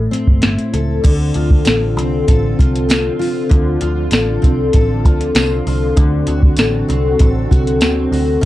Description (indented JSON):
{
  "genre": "indie pop, bedroom pop",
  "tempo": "98 BPM",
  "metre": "4/4",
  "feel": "straight",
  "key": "D minor",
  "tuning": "A4 = 441 Hz",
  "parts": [
    { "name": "picked steel-string acoustic guitar", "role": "accompaniment", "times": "0.0-8.5 s", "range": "G2 to A4", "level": "-18 LUFS", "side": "left 2 dB", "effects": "analog chorus, warbly pitch drift" },
    { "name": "vintage muted picked electric bass", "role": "bass", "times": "0.0-8.4 s", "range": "G1 to D2", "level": "-18 LUFS", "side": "equal", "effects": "none" },
    { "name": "soft vintage rhythm box", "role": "drums", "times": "0.1-8.5 s", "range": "crash cymbal, hi-hat, kick drum, snare drum", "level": "-13 LUFS", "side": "equal", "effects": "none" },
    { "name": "string machine, cellos", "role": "sustained chords", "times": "1.0-8.4 s", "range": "D3 to F#4", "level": "-24 LUFS", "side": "right 2 dB", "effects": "ensemble chorus" },
    { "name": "tambourine", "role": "percussion", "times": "1.7-8.0 s", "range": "none", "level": "-31 LUFS", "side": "right 5 dB", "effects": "none" }
  ],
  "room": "light reverb",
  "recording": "dry, gritty hardware recording, cassette tape",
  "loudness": "-12 LUFS",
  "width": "side -15 dB against mid",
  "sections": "0.0-1.0 A section; 1.0-8.5 B section",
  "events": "none",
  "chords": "0.0 Am7; 1.0 Dm7; 6.0 D7"
}